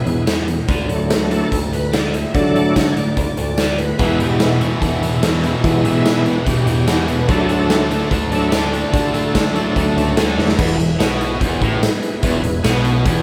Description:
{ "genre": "classic rock", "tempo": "146 BPM", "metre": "4/4", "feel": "straight", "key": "E mixolydian", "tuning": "A4 = 437 Hz", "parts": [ { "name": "bright tonewheel organ", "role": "sustained chords", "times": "0.0-13.2 s", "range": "F#3 to E5", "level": "-24 LUFS", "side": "equal", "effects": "slow rotary speaker, overdrive, chorus vibrato" }, { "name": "sludgy distorted guitar", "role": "riff", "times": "0.0-13.2 s", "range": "E2 to D4", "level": "-23 LUFS", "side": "equal", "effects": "overdrive" }, { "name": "picked electric bass", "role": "bass", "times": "0.1-13.2 s", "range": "E1 to E3", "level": "-26 LUFS", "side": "equal", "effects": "none" }, { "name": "big rock drum kit", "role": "drums", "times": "0.1-13.2 s", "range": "crash cymbal, hi-hat, kick drum, snare drum, tambourine", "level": "-22 LUFS", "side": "equal", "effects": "none" }, { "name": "distorted electric guitar", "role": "riff", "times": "4.0-13.2 s", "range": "E2 to D4", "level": "-25 LUFS", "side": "equal", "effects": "overdrive" } ], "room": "wet large studio reverb, RT60 1.2 s", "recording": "band playing live in one room", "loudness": "-17 LUFS", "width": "mono", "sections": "0.0-10.6 A section; 10.6-13.2 B section", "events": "tonewheel organ solo 0.0-10.6; drum fill 10.4", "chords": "0.0 E; 0.7 D; 4.0 E; 7.3 D; 10.6 E", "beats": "0.27 | 0.69 1.10 1.52 1.93 | 2.34 2.76 3.17 3.58 | 4.00 4.41 4.82 5.23 | 5.64 6.06 6.47 6.88 | 7.29 7.70 8.12 8.53 | 8.94 9.35 9.76 10.17 | 10.58 10.99 11.41 11.82 | 12.23 12.64 13.05" }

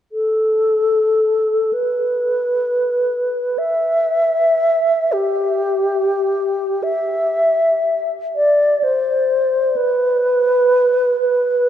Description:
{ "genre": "classical, free, expressive piece for unaccompanied alto flute", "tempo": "30-43 BPM (dotted quarters)", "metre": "6/8", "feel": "rubato", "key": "unclear", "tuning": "A4 = 440 Hz", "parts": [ { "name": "mellow wooden-headed alto flute", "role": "solo", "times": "0.1-11.7 s", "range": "G4 to E5", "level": "-15 LUFS", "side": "equal", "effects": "none" } ], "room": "wet cathedral reverb, RT60 4.7 s", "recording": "recorded in a church or concert hall", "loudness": "-15 LUFS", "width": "side -10 dB against mid", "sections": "0.1-11.7 A section", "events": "none", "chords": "none", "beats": "| 0.12 1.74 | 3.59 5.14 | 6.85 8.37 | 9.78 11.21" }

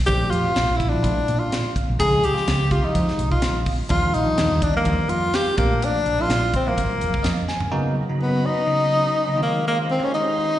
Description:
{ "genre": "electric jazz fusion", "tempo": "126 BPM", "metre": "4/4", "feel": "swing 54% on 16ths", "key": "unclear", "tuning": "A4 = 441 Hz", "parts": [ { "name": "woody fretless electric bass", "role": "bass", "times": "0.0-7.5 s", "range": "Gb1 to Bb2", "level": "-23 LUFS", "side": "equal", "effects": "analog chorus" }, { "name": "warm tenor saxophone", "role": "melody", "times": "0.1-10.6 s", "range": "Bb3 to Ab4", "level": "-21 LUFS", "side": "left 1 dB", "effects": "slapback echo, tape echo" }, { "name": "bell-like tine electric piano", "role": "accompaniment", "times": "0.1-10.4 s", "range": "Db3 to Ab5", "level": "-26 LUFS", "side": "right 1 dB", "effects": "phaser, slapback echo" }, { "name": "crisp fusion drum kit", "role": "drums", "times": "0.1-7.7 s", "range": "hi-hat, kick drum, snare drum, toms", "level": "-26 LUFS", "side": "equal", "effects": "none" }, { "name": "soft string machine", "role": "sustained chords", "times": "7.7-10.6 s", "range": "Eb3 to C6", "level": "-31 LUFS", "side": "equal", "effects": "ensemble chorus" } ], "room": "light reverb", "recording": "live gig heard through the venue's PA, recital hall reverb, nothing above 10.7 kHz", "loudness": "-18 LUFS", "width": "side -12 dB against mid", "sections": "0.0-7.7 A section; 7.7-10.6 B section", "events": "tine electric piano fill 7.0-7.7; drum fill 7.5", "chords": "0.1 Bbmaj9; 2.0 Dbmaj9; 3.9 Ebmaj9; 5.6 Bbmaj9; 6.8 Ab13; 7.7 Db13sus4; 9.4 Eb13sus4", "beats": "| 0.08 0.56 1.03 1.51 | 1.99 2.47 2.94 3.42 | 3.90 4.38 4.86 5.34 | 5.82 6.29 6.77 7.25 | 7.73 8.21 8.68 9.16 | 9.64 10.12" }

